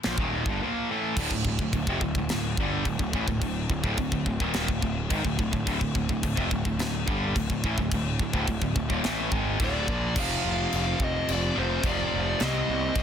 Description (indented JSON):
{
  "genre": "heavy metal",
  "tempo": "107 BPM",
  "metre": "4/4",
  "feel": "straight",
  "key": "D phrygian",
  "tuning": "A4 = 440 Hz",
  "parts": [
    { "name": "distorted electric guitar", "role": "riff", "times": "0.0-13.0 s", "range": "D2 to C4", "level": "-28 LUFS", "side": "equal", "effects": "overdrive" },
    { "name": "tight metal drum kit", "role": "drums", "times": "0.0-13.0 s", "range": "china cymbal, crash cymbal, kick drum, snare drum", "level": "-30 LUFS", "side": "equal", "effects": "none" },
    { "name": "fuzz picked electric bass", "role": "bass", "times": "0.1-13.0 s", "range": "D1 to C2", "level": "-31 LUFS", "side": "equal", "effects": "overdrive" },
    { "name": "high-gain lead guitar", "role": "melody", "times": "9.6-13.0 s", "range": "C5 to F5", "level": "-31 LUFS", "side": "left 1 dB", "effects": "distortion" }
  ],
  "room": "small room ambience",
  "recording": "dense, heavily limited modern master",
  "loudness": "-24 LUFS",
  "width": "side -8 dB against mid",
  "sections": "0.0-1.2 A section; 1.2-10.2 B section; 10.2-13.0 C section",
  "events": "half time 10.2-13.0",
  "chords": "0.0 Dm (rootless); 1.2 D5; 10.2 F5; 12.4 Cm",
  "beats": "0.05 0.61 | 1.18 1.74 2.30 2.87 | 3.43 3.99 4.55 5.12 | 5.68 6.24 6.80 7.36 | 7.92 8.48 9.04 9.61 | 10.17 10.73 11.29 11.85 | 12.40 12.96"
}